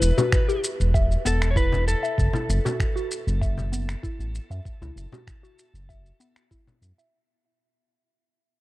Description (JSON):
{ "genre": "organic downtempo", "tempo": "97 BPM", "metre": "4/4", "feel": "straight", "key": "unclear", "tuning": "A4 = 440 Hz", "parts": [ { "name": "electric slide guitar", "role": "melody", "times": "0.0-6.5 s", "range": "A4 to C#5", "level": "-30 LUFS", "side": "equal", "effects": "tape echo" }, { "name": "smooth synth bass", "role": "bass", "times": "0.0-6.9 s", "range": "E1 to F#2", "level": "-24 LUFS", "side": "equal", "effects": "sidechain pumping" }, { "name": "electronic shaker and finger snaps", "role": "drums", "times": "0.0-7.1 s", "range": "none", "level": "-33 LUFS", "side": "equal", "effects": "none" }, { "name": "mallet-like synth pluck", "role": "arpeggios", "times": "0.2-7.1 s", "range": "B3 to E5", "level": "-30 LUFS", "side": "left 2 dB", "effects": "chorus, phaser, tape echo" }, { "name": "frame drum", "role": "percussion", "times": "0.2-6.8 s", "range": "none", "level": "-29 LUFS", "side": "left 2 dB", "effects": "none" }, { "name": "electronic kick drum", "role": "drums", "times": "0.3-6.6 s", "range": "none", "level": "-24 LUFS", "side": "equal", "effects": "none" } ], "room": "digital ambience", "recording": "dark, warm production", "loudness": "-21 LUFS", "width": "side -18 dB against mid", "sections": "0.0-7.1 A section", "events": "fade-out 0.0-7.1", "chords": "0.0 E5; 2.2 F#m", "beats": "0.32 0.94 1.56 | 2.18 2.80 3.42 4.03 | 4.65 5.27 5.89 6.51" }